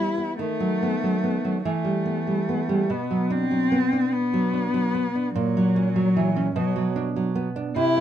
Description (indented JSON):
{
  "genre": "romantic duo for cello and classical guitar",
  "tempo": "49 BPM (dotted quarters)",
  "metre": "6/8",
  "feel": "rubato",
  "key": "unclear",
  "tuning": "A4 = 440 Hz",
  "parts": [
    { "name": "warm cello", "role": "melody", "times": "0.0-8.0 s", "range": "F#3 to E4", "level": "-25 LUFS", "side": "left 4 dB", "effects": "none" },
    { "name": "nylon-string guitar", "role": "accompaniment", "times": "0.0-8.0 s", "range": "A#2 to D4", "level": "-24 LUFS", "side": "right 3 dB", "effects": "none" }
  ],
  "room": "light reverb",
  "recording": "minimal, uncompressed stereo recording",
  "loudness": "-21 LUFS",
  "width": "side -10 dB against mid",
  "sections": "0.0-8.0 A section",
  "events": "none",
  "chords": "0.4 B7/D#; 1.6 Em; 2.9 Bm; 5.4 F#7/A#; 6.6 Bm"
}